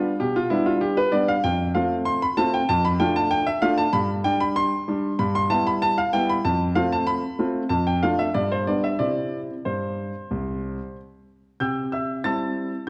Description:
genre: classical-period piano sonatina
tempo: 95 BPM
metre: 4/4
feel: straight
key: C major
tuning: A4 = 444 Hz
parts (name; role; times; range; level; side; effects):
- warm concert grand piano; solo; 0.0-12.9 s; C2 to A6; -23 LUFS; equal; none
room: wet recital hall reverb, RT60 1.6 s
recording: dark, warm production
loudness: -23 LUFS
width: mono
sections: 0.0-11.6 A section; 11.6-12.9 A section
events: none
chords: 0.0 G/B; 1.4 F; 2.7 Dm/F; 3.9 G5; 5.2 Em/G; 6.5 F; 7.7 Dm/F; 8.4 G; 9.0 C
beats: 0.20 0.82 | 1.44 2.07 2.69 3.31 | 3.94 4.57 5.19 5.82 | 6.45 7.08 7.71 8.35 | 9.01 9.66 10.31 10.96 | 11.61 12.25 12.88

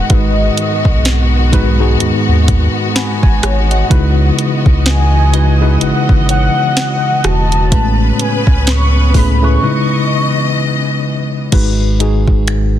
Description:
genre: contemporary R&B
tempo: 63 BPM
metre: 4/4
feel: swing 58% on 16ths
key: C# minor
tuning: A4 = 441 Hz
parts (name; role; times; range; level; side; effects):
- warm velvety synth lead; melody; 0.0-11.0 s; D#5 to C#6; -19 LUFS; equal; chorus, ping-pong delay
- tine electric piano; accompaniment; 0.0-12.8 s; G#2 to B5; -16 LUFS; left 2 dB; overdrive, fast stereo tremolo
- warm symphonic string section; sustained chords; 0.0-11.5 s; C#3 to D#5; -19 LUFS; left 1 dB; none
- sub bass with octave; bass; 0.0-12.8 s; E1 to D#2; -13 LUFS; equal; none
- smooth R&B drum kit; drums; 0.1-12.7 s; crash cymbal, finger snaps, hi-hat, kick drum, rim click, snare drum; -14 LUFS; equal; none
- glassy wavetable pluck; texture; 3.4-8.2 s; F#4 to F#5; -28 LUFS; equal; chorus, ping-pong delay
room: little or no reverb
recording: dense, heavily limited modern master, faint mains hum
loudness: -10 LUFS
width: side -11 dB against mid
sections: 0.0-11.5 A section; 11.5-12.8 B section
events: break 9.6-11.5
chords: 0.0 G#m7; 3.9 C#m11; 7.7 Amaj9; 9.6 C#m9; 11.5 G#m7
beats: | 0.10 1.05 2.00 2.95 | 3.91 4.86 5.81 6.76 | 7.72 8.67 9.62 10.57 | 11.53 12.48

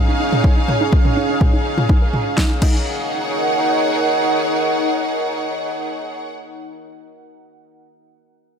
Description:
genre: melodic techno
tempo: 124 BPM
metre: 4/4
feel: straight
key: Eb minor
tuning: A4 = 444 Hz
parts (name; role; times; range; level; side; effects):
- deep dark ambient pad; sustained chords; 0.0-6.1 s; Db4 to Gb5; -20 LUFS; right 1 dB; chorus, built-in reverb, sidechain pumping
- tight sequenced synth; arpeggios; 0.0-2.8 s; Eb4 to Eb5; -28 LUFS; right 2 dB; chorus, sidechain pumping, ping-pong delay
- clear studio string section; texture; 0.0-6.3 s; D#4 to Gb5; -24 LUFS; equal; sidechain pumping
- deep house drum kit; drums; 0.3-2.8 s; crash cymbal, snare drum, toms; -23 LUFS; equal; none
- electronic kick drum; drums; 0.4-2.8 s; none; -15 LUFS; equal; none
room: moderate concert hall reverb, RT60 2.1 s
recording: none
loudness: -15 LUFS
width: side -7 dB against mid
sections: 0.0-2.4 A section; 2.4-6.2 B section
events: filter sweep on synth arpeggio sound 0.0-2.4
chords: 0.0 Db; 2.4 Ebm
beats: | 0.44 0.93 1.41 1.89 | 2.38 2.86 3.35 3.83 | 4.31 4.80 5.28 5.76

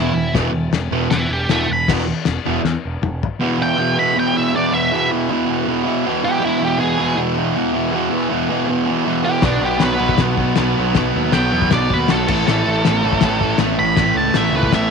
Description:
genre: garage rock duo or trio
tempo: 159 BPM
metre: 4/4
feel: straight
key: unclear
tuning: A4 = 440 Hz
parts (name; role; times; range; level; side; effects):
- octave-fuzz lead guitar; melody; 0.0-14.9 s; D4 to C#6; -20 LUFS; right 2 dB; distortion
- fuzz guitar; riff; 0.0-14.9 s; E2 to B3; -18 LUFS; right 1 dB; distortion
- growling picked electric bass; bass; 0.0-3.2, 9.4-14.9 s; E1 to E2; -22 LUFS; right 1 dB; overdrive
- cloth-damped thuddy drum kit; drums; 0.3-3.3, 9.4-14.8 s; crash cymbal, kick drum, snare drum, toms; -20 LUFS; left 6 dB; none
room: light reverb, small room reverb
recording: 1960s-style stereo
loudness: -15 LUFS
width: side -5 dB against mid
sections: 0.0-1.9 A section; 1.9-3.4 B section; 3.4-14.9 C section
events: lead electric guitar solo 0.0-1.9; drum fill 2.6-3.4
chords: 0.0 E5; 9.4 B5; 12.3 A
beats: | 0.35 0.73 1.11 1.49 | 1.87 2.25 2.63 3.01 | 3.39 3.77 4.15 4.53 | 4.90 5.28 5.66 6.04 | 6.42 6.79 7.17 7.55 | 7.93 8.31 8.69 9.06 | 9.44 9.82 10.20 10.57 | 10.95 11.33 11.71 12.08 | 12.46 12.84 13.22 13.59 | 13.97 14.35 14.73

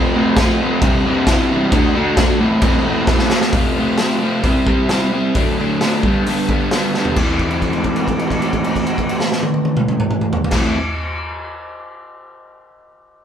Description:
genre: garage rock duo or trio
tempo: 132 BPM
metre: 4/4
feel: straight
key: A minor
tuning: A4 = 440 Hz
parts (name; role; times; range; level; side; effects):
- crunchy overdriven guitar; riff; 0.0-10.8 s; F2 to F#4; -16 LUFS; equal; none
- raw garage drum kit; drums; 0.4-10.6 s; crash cymbal, hi-hat, kick drum, snare drum, toms; -18 LUFS; equal; none
room: light reverb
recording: band playing live in one room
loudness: -14 LUFS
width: side -9 dB against mid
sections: 0.0-3.5 A section; 3.5-7.2 B section; 7.2-10.8 C section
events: drum fill 3.1-3.5, 6.9; held note 7.2-10.5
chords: 0.0 F; 0.8 C; 1.7 D; 2.4 Am; 3.5 F; 4.4 C; 5.3 D; 6.0 G; 7.2 Am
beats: 0.37 0.82 1.27 | 1.73 2.18 2.63 3.08 | 3.54 3.99 4.44 4.89 | 5.35 5.80 6.26 6.71 | 7.17 7.62 8.08 8.53 | 8.99 9.44 9.89 10.35

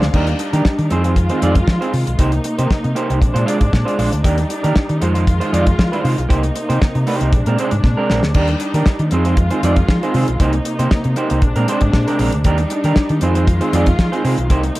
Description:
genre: disco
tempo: 117 BPM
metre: 4/4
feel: straight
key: unclear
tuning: A4 = 440 Hz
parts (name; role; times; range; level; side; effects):
- electric guitar through a small old amp; accompaniment; 0.0-14.8 s; Ab3 to D5; -20 LUFS; right 2 dB; none
- rich studio string section; sustained chords; 0.0-14.8 s; C3 to F4; -22 LUFS; left 1 dB; none
- fingered electric bass; bass; 0.0-14.7 s; Bb1 to F3; -17 LUFS; equal; none
- damped 70s drum kit; drums; 0.0-14.8 s; crash cymbal, hi-hat, kick drum, snare drum; -18 LUFS; equal; none
room: studio reverb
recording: dark, warm production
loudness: -14 LUFS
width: side -17 dB against mid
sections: 0.1-14.8 A section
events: drum fill 7.8-8.3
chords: 0.1 Ebmaj7; 0.9 Fm7; 2.2 Cm7; 3.2 Bb9; 4.2 Ebmaj7; 5.0 Fm7; 6.3 Cm7; 7.3 Bb9; 8.3 Ebmaj7; 9.1 Fm7; 10.4 Cm7; 11.4 Bb9; 12.4 Ebmaj7; 13.2 Fm7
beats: | 0.14 0.65 1.17 1.68 | 2.19 2.71 3.22 3.73 | 4.25 4.76 5.27 5.79 | 6.30 6.81 7.32 7.84 | 8.35 8.86 9.38 9.89 | 10.40 10.91 11.42 11.94 | 12.45 12.96 13.47 13.99 | 14.50

